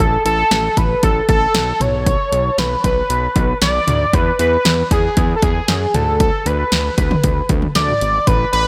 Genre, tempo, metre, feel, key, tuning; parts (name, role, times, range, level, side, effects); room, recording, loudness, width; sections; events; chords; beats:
synth-pop; 116 BPM; 4/4; straight; A major; A4 = 440 Hz
octave-doubled lead; melody; 0.0-8.7 s; G#4 to D5; -19 LUFS; equal; chorus, phaser, shimmer reverb, tape echo
fat analog bass; bass; 0.0-8.7 s; G#1 to F#2; -22 LUFS; equal
punchy analog drum machine; drums; 0.0-8.7 s; hi-hat, kick drum, snare drum, toms; -20 LUFS; equal
light reverb, digital ambience; -16 LUFS; mono
0.0-8.7 A section
0.0 Asus2; 1.8 Bmadd9; 4.1 E; 5.9 G#dim
| 0.00 0.51 1.03 1.55 | 2.06 2.58 3.10 3.62 | 4.13 4.65 5.17 5.69 | 6.20 6.72 7.24 7.75 | 8.27